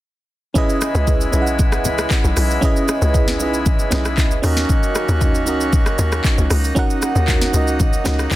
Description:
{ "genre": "amapiano", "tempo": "116 BPM", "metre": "4/4", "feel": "straight", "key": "C# dorian", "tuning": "A4 = 440 Hz", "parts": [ { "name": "FM electric piano with tremolo", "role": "accompaniment", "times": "0.5-8.4 s", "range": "C#4 to G#5", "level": "-21 LUFS", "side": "right 2 dB", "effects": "none" }, { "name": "accordion", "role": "sustained chords", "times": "0.6-8.4 s", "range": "C#3 to F#4", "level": "-25 LUFS", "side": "left 2 dB", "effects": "sidechain pumping" }, { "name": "afro-pop drum kit", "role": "drums", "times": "0.6-8.4 s", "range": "handclaps, hi-hat, kick drum, rim click, shaker, snare drum", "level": "-18 LUFS", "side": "equal", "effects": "soft clipping on snare" }, { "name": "congas and bongos", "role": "percussion", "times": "0.6-8.4 s", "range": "none", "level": "-27 LUFS", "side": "left 4 dB", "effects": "none" }, { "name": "tight log drum bass", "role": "bass", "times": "0.9-8.4 s", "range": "B1 to D#2", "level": "-19 LUFS", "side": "equal", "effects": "none" } ], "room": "little or no reverb", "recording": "dense, heavily limited modern master", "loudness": "-15 LUFS", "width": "side -16 dB against mid", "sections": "0.6-8.4 A section", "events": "drop 0.6-8.4; FM electric piano fill 7.8-8.4", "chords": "0.6 C#m7; 4.4 D#m7", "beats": "| 0.56 1.07 1.59 2.11 | 2.62 3.14 3.66 4.18 | 4.69 5.21 5.73 6.25 | 6.76 7.28 7.80 8.31" }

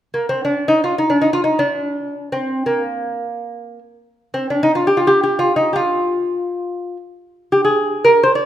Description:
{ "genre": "persian", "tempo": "free time", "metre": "none", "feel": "none", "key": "unclear", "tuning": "A4 = 444 Hz", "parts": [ { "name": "lute", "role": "melody", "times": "0.1-8.5 s", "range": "Bb3 to Db5+45c", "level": "-15 LUFS", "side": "equal", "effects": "none" } ], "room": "wet recital hall reverb, RT60 1.5 s", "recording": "minimal, uncompressed stereo recording", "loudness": "-15 LUFS", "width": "side -11 dB against mid", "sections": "0.0-8.5 A section", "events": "none", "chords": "none", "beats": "free time" }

